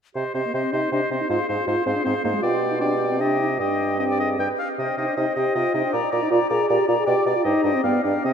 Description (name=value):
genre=quick classical-period movement for wind quintet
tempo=157 BPM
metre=3/4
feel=rubato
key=C minor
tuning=A4 = 443 Hz
part: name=hollow concert flute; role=melody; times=0.2-8.3 s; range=Eb5 to Bb5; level=-29 LUFS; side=left 5 dB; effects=none
part: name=clear oboe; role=second line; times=0.2-8.3 s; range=C5 to G5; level=-27 LUFS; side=left 2 dB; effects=none
part: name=mellow clarinet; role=accompaniment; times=0.2-8.3 s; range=G4 to D5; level=-28 LUFS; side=right 5 dB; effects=none
part: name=dark bassoon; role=bass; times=0.2-8.3 s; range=G2 to C3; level=-26 LUFS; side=right 3 dB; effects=none
part: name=mellow French horn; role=accompaniment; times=0.3-8.3 s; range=Ab3 to Ab4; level=-24 LUFS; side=left 1 dB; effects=none
room=wet cathedral reverb, RT60 5.9 s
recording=in a vast, echoing space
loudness=-20 LUFS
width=side -7 dB against mid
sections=0.2-8.3 A section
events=none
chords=0.2 Cm; 1.3 Fm/Ab; 2.4 G/B; 3.2 Cm; 3.6 Cm/G; 4.4 G; 4.8 Cm; 5.9 Bb; 7.1 G/B; 7.4 Cm/G; 7.8 G7